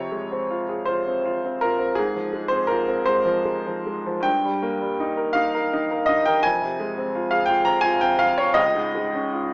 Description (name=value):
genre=classical, romantic nocturne for solo piano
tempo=55 BPM (dotted quarters)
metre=12/8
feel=rubato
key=unclear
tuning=A4 = 440 Hz
part: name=bright baby grand piano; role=solo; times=0.0-9.5 s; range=Db2 to Bb5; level=-20 LUFS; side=equal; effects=none
room=wet recital hall reverb, RT60 1.5 s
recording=small speaker sound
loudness=-20 LUFS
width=side -30 dB against mid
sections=0.0-9.5 A section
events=none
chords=0.0 Fm; 2.0 Fm/Ab; 4.3 Eb/G; 6.4 Fm; 8.6 Db